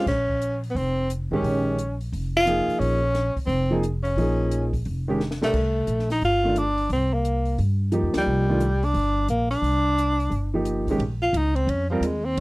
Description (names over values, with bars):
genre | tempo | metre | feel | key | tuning
modal jazz | 176 BPM | 4/4 | swing 64% on 8ths | Bb dorian | A4 = 440 Hz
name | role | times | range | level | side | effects
breathy tenor saxophone | melody | 0.0-12.4 s | F3 to F4 | -24 LUFS | equal | none
clear concert grand piano | accompaniment | 0.0-12.0 s | Eb3 to Bb4 | -25 LUFS | right 1 dB | none
upright bass | bass | 0.1-12.4 s | F1 to G2 | -25 LUFS | equal | none
compact cocktail drum kit | drums | 0.1-12.4 s | crash cymbal, hi-hat, kick drum, ride cymbal, snare drum | -34 LUFS | equal | none
room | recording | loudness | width
light reverb | dry, close 1970s-style studio recording | -21 LUFS | side -22 dB against mid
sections
0.0-11.0 A section; 11.0-12.4 B section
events
drum fill 5.2-5.5; band accent 8.1; tenor saxophone solo 11.0-12.4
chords
0.1 Bbm11; 5.5 Cm11; 11.0 Bbmadd9